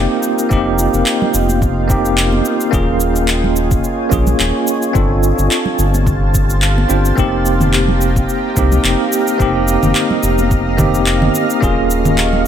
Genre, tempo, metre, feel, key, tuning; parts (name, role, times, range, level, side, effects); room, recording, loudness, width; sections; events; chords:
sunset chillout; 108 BPM; 4/4; swing 55% on 16ths; F minor; A4 = 440 Hz
bell-like tine electric piano; accompaniment; 0.0-12.5 s; Bb3 to C5; -17 LUFS; equal; fast stereo tremolo, auto-pan, ping-pong delay
shimmering ambient pad; sustained chords; 0.0-12.5 s; F4 to Db6; -20 LUFS; right 1 dB; chorus, built-in reverb
round analog bass; bass; 0.0-12.5 s; Eb1 to C2; -16 LUFS; equal
electronic shaker, handclaps and congas; drums; 0.2-12.3 s; -20 LUFS; right 1 dB
electronic kick drum; drums; 0.5-11.7 s; -18 LUFS; equal
congas; percussion; 1.2-12.4 s; -24 LUFS; right 2 dB
light reverb; -12 LUFS; side -9 dB against mid
0.0-12.5 A section
0.0 F9sus4; 2.7 Eb9sus4; 5.0 G9sus4; 7.2 F9sus4; 11.6 Eb9sus4